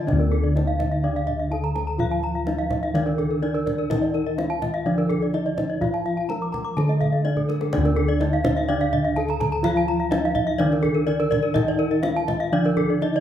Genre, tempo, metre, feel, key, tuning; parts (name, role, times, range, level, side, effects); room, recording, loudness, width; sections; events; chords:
Balinese gamelan; 125 BPM; 4/4; straight; D pelog; A4 = 441 Hz
gamelan-type bronze metallophone; melody; 0.0-13.2 s; D4 to Bb4-20c; -27 LUFS; right 1 dB
gamelan-type bronze metallophone; accompaniment; 0.0-13.2 s; D3 to A3-30c; -31 LUFS; right 2 dB
gamelan-type bronze metallophone; arpeggios; 0.0-13.1 s; A4-30c to D6; -26 LUFS; left 4 dB
gamelan-type bossed gongs; bass; 0.0-13.2 s; D2 to F4-30c; -25 LUFS; left 1 dB
kendang; percussion; 0.1-13.2 s; -30 LUFS; equal
gamelan-type bronze metallophone; arpeggios; 0.2-13.2 s; A4-30c to D6; -29 LUFS; right 5 dB
moderate large studio reverb, RT60 1.2 s; band playing live in one room; -20 LUFS; side -10 dB against mid
0.1-13.2 A section
drum fill 7.4-7.7